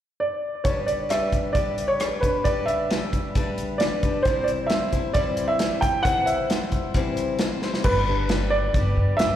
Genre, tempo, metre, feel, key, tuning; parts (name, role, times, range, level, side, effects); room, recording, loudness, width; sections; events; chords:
folk rock and heartland rock; 133 BPM; 4/4; straight; A4 = 441 Hz
warm baby grand piano; melody; 0.2-9.4 s; B4 to G5; -24 LUFS; right 1 dB; slapback echo, tape echo
natural country drum kit; drums; 0.6-9.3 s; crash cymbal, hi-hat, kick drum, rim click, snare drum; -25 LUFS; equal
picked old ladder-braced acoustic guitar; accompaniment; 0.7-9.4 s; C3 to C5; -28 LUFS; left 5 dB; slapback echo
upright bass; bass; 7.8-9.4 s; G1 to G2; -23 LUFS; equal
light reverb, studio ambience; live gig heard through the venue's PA, recital hall reverb; -21 LUFS; side -11 dB against mid
0.7-7.9 A section; 7.9-9.4 B section
drum fill 7.6
0.0 N.C.; 0.7 G; 4.3 C; 7.9 G